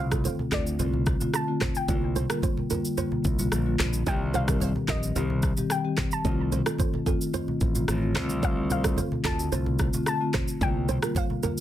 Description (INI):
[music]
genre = afrobeats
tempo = 110 BPM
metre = 4/4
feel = straight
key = unclear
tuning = A4 = 440 Hz
[part]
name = soft round pluck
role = melody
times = 0.0-11.6 s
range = D5 to A5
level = -33 LUFS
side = left 2 dB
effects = chorus, digital delay
[part]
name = flamenco guitar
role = riff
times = 0.0-11.5 s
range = A4 to Eb5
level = -34 LUFS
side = right 10 dB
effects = digital delay
[part]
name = modern bright fingered electric bass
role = bass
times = 0.0-11.0 s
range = A1 to D2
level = -28 LUFS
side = equal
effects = none
[part]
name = marimba with soft mallets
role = accompaniment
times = 0.1-11.6 s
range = D3 to G4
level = -29 LUFS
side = left 2 dB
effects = none
[part]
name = afro-pop drum kit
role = drums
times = 0.1-11.6 s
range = handclaps, kick drum, rim click, shaker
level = -28 LUFS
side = equal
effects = none
[part]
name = congas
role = percussion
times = 0.2-11.6 s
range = none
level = -34 LUFS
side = right 1 dB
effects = none
[sound]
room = little or no reverb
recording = dense, heavily limited modern master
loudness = -24 LUFS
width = side -12 dB against mid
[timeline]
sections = 0.0-11.6 A section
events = none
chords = 0.0 Dm7/C; 1.9 Bb6/C; 4.1 Cm; 6.2 F7/C; 8.2 Dm7/C; 10.6 Bb6/C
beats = 0.25 0.79 1.34 | 1.89 2.43 2.98 3.52 | 4.07 4.61 5.16 5.70 | 6.25 6.79 7.34 7.88 | 8.43 8.98 9.52 10.07 | 10.61 11.16